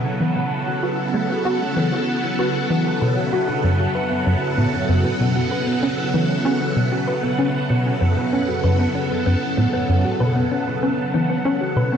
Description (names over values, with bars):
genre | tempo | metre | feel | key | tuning
ambient, sequencer-driven space music | 96 BPM | 4/4 | straight | unclear | A4 = 442 Hz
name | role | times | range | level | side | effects
phased string machine | sustained chords | 0.0-12.0 s | C#3 to A4 | -22 LUFS | equal | ensemble chorus, phaser, shimmer reverb
thumb-piano-like synth pluck | arpeggios | 0.0-12.0 s | F#3 to B4 | -27 LUFS | left 1 dB | chorus, auto-pan, analog delay, shimmer reverb
tight sequencer bass | riff | 0.0-11.9 s | F#2 to F#4 | -21 LUFS | equal | ensemble chorus, analog delay
bubbling stepped-filter texture | texture | 0.0-12.0 s | F#5 | -28 LUFS | right 2 dB | chorus, built-in reverb, shimmer reverb
room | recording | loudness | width
wet concert hall reverb, RT60 2.3 s | cassette tape | -18 LUFS | side -8 dB against mid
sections
0.0-12.0 A section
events
fade-in on synth arpeggio sound 0.0-12.0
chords
0.0 B7(no3); 3.6 F#m7